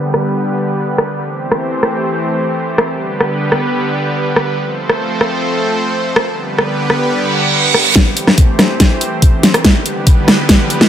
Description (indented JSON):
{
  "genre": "heavy wobble dubstep",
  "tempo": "142 BPM",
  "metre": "4/4",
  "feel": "half-time",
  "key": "A minor",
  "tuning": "A4 = 439 Hz",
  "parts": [
    { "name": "supersaw pad", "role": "sustained chords", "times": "0.0-10.9 s", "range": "D3 to C5", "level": "-16 LUFS", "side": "equal", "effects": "sidechain pumping, low-pass filter" },
    { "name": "dubstep drum kit", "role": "drums", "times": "0.1-10.9 s", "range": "hi-hat, rim click, snare drum", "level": "-13 LUFS", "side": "equal", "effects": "small room ambience" },
    { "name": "reverse cymbal and riser", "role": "sound effects", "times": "7.2-10.9 s", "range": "none", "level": "-17 LUFS", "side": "right 4 dB", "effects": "none" },
    { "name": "electronic kick drum", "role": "drums", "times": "8.0-10.6 s", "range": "none", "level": "-10 LUFS", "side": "equal", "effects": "small room ambience" }
  ],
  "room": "light reverb",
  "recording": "low-pass filter",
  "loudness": "-11 LUFS",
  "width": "side -10 dB against mid",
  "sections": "0.0-8.0 A section; 8.0-10.9 B section",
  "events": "filter sweep 0.0-8.0; reverse cymbal 7.2-8.0; build-up 8.0-10.9; drum fill 8.0-10.9; filter sweep on supersaw synth 8.0-10.9",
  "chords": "0.0 G; 1.2 Am7; 2.9 G; 4.6 F; 6.3 G; 8.0 Am7; 9.6 G"
}